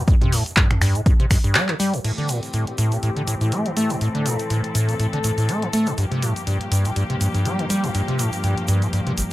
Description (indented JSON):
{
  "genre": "acid house",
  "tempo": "122 BPM",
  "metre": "4/4",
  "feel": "swing 56% on 16ths",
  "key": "A phrygian",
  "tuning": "A4 = 439 Hz",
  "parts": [
    { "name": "acid bass, square", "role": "riff", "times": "0.0-9.2 s", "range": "G1 to A3", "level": "-21 LUFS", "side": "equal", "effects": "overdrive, wide subtle chorus, cassette tape, analog delay" },
    { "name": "electronic kick drum", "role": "drums", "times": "0.1-1.4 s", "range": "none", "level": "-17 LUFS", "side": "equal", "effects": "overdrive" },
    { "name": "punchy analog drum machine", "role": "drums", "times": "0.1-9.3 s", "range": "crash cymbal, finger snaps, handclaps, hi-hat, toms", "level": "-25 LUFS", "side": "equal", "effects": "overdrive" },
    { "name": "tube shaker", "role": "percussion", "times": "0.1-9.3 s", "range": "none", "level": "-33 LUFS", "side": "right 2 dB", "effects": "none" },
    { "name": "clear symphonic string section", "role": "sustained chords", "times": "2.0-9.3 s", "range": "G2 to A4", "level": "-26 LUFS", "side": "left 1 dB", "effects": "sidechain pumping, low-pass filter" }
  ],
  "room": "light reverb",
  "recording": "dry, gritty hardware recording",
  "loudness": "-18 LUFS",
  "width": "side -16 dB against mid",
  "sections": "0.0-2.0 A section; 2.0-9.3 B section",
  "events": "break 1.6-2.0; band accent 1.6; filter sweep on string section 2.0-9.3",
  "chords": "0.0 G5; 2.0 Am7; 6.0 Gm7",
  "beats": "| 0.08 0.57 1.06 1.55 | 2.04 2.54 3.03 3.52 | 4.01 4.50 5.00 5.49 | 5.98 6.47 6.96 7.46 | 7.95 8.44 8.93"
}